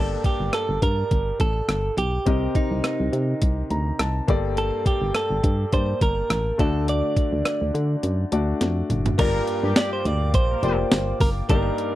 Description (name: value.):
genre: 1980s-style pop.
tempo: 104 BPM.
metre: 4/4.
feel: swing 55% on 16ths.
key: G harmonic minor.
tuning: A4 = 440 Hz.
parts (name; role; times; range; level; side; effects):
direct-recorded clean electric guitar; melody; 0.0-12.0 s; Eb4 to D5; -26 LUFS; right 3 dB; slapback echo.
clear concert grand piano; accompaniment; 0.0-12.0 s; G2 to Bb5; -28 LUFS; left 4 dB; none.
solid FM bass; bass; 0.0-11.7 s; F1 to D3; -25 LUFS; equal; none.
clean 12-bit digital drum machine; drums; 0.2-11.9 s; crash cymbal, hi-hat, kick drum, rim click, snare drum, tambourine, toms; -22 LUFS; equal; none.
glass harmonica; sustained chords; 9.2-12.0 s; Eb4 to D6; -34 LUFS; equal; none.
warm horn section; stabs; 9.2-10.8 s; G3 to C5; -30 LUFS; left 4 dB; none.
room: light reverb.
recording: dry, close 1970s-style studio recording.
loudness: -20 LUFS.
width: side -14 dB against mid.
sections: 0.0-9.2 A section; 9.2-12.0 B section.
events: grand piano fill 3.4-4.6; drum fill 8.6-9.2.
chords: 0.0 Gmadd9; 2.3 Cm7; 4.3 Gmadd9; 6.6 D; 9.2 Gm7.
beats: 0.53 1.11 1.69 | 2.26 2.84 3.42 4.00 | 4.57 5.15 5.73 6.30 | 6.88 7.46 8.03 8.61 | 9.19 9.76 10.34 10.92 | 11.49.